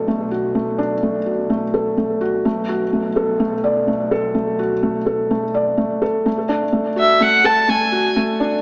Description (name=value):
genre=piano and strings electronica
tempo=126 BPM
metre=4/4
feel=straight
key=B dorian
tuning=A4 = 441 Hz
part: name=felt-muted upright piano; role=riff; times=0.0-8.6 s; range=A3 to D5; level=-20 LUFS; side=equal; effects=low-pass filter, digital delay
part: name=warm chamber double bass section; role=bass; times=0.0-6.2 s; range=B1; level=-33 LUFS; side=equal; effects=none
part: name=warm violin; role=melody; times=7.0-8.2 s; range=E5 to A5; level=-17 LUFS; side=equal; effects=digital delay
room=wet recital hall reverb, RT60 1.3 s, small room ambience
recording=small speaker sound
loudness=-19 LUFS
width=mono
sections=0.0-6.3 A section; 6.3-8.6 B section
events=build-up 6.3-8.6; filter sweep 6.3-8.6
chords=0.0 Bm7; 6.3 D